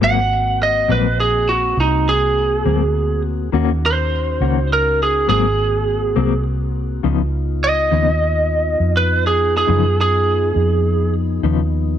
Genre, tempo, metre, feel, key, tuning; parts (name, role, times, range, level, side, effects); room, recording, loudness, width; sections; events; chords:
blues; 68 BPM (dotted quarters); 12/8; straight; Ab mixolydian; A4 = 440 Hz
lightly driven lead guitar; melody; 0.0-11.1 s; Eb4 to Gb5; -17 LUFS; right 3 dB
mellow electric guitar; accompaniment; 0.0-11.6 s; Ab2 to Gb4; -20 LUFS; left 13 dB; tremolo
mellow tonewheel organ; sustained chords; 0.0-12.0 s; F3 to Gb4; -27 LUFS; left 12 dB; slow rotary speaker
vintage muted fingered electric bass; bass; 0.0-12.0 s; Ab1 to Gb2; -19 LUFS; right 1 dB
digital ambience; 1960s-style stereo; -15 LUFS; side -10 dB against mid
0.0-12.0 A section
0.0 Ab9; 3.5 Ebm7; 5.3 Ab9; 7.0 Db9